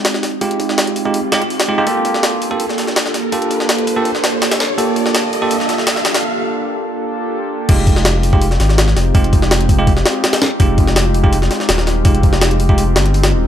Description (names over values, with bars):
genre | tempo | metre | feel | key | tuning
drum and bass, jungle | 165 BPM | 4/4 | straight | F dorian | A4 = 440 Hz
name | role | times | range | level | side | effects
warbly tape-like pad | sustained chords | 0.0-13.5 s | Ab3 to A4 | -20 LUFS | equal | chorus, built-in reverb, vintage 12-bit sampler grit
jungle sampler-style drum kit | drums | 0.0-13.3 s | crash cymbal, hi-hat, kick drum, snare drum | -15 LUFS | equal | high-pass filter on hats, high-pass filter on snare, high-pass filter on kick, high-pass filter on cymbals
riser | sound effects | 0.0-6.2 s | none | -25 LUFS | equal | none
bell-like tine electric piano | stabs | 0.4-12.8 s | Ab3 to A4 | -19 LUFS | right 3 dB | low-pass filter, dub echo
saturated sub bass | bass | 7.7-13.5 s | Eb1 to Ab1 | -15 LUFS | equal | none
room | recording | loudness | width
light reverb, digital ambience | none | -12 LUFS | side -10 dB against mid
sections
0.0-7.7 A section; 7.7-13.5 B section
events
build-up 0.0-7.7; riser 0.0-6.2; filter sweep on ambient pad 0.0-7.7; filter sweep on tine electric piano 0.0-7.7; break 6.2-7.7; drop 7.7-13.5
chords
0.0 Fm9; 1.9 Gm9; 7.7 Fm9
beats
0.05 | 0.42 0.78 1.14 1.51 | 1.87 2.23 2.60 2.96 | 3.33 3.69 4.05 4.42 | 4.78 5.14 5.51 5.87 | 6.24 6.60 6.96 7.33 | 7.69 8.05 8.42 8.78 | 9.14 9.51 9.87 10.23 | 10.60 10.96 11.33 11.69 | 12.05 12.42 12.78 13.14